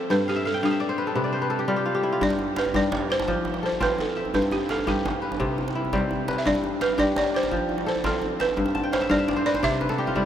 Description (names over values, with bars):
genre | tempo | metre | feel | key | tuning
west african traditional, West African string and xylophone music | 113 BPM (dotted quarters) | 12/8 | straight | unclear | A4 = 440 Hz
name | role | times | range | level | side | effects
balafon | melody | 0.0-10.3 s | G4 to E5 | -27 LUFS | right 2 dB | analog delay
kora | arpeggios | 0.0-10.3 s | G2 to A5 | -24 LUFS | left 2 dB | analog delay
djembe | percussion | 2.2-10.3 s | none | -30 LUFS | right 2 dB | none
room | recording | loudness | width
wet huge ambient reverb, RT60 7.0 s | dreamy mix soaked in reverb | -22 LUFS | side -10 dB against mid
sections
0.0-10.3 A section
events
kora fill 0.3-2.2, 8.7-10.3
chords
0.1 G13; 1.2 C5; 2.2 G5; 3.3 F; 4.3 G; 5.4 C; 6.5 G; 7.5 F; 8.6 G; 9.6 C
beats
| 0.10 0.63 1.16 1.69 | 2.22 2.75 3.28 3.81 | 4.34 4.87 5.40 5.93 | 6.46 6.99 7.51 8.04 | 8.57 9.10 9.63 10.16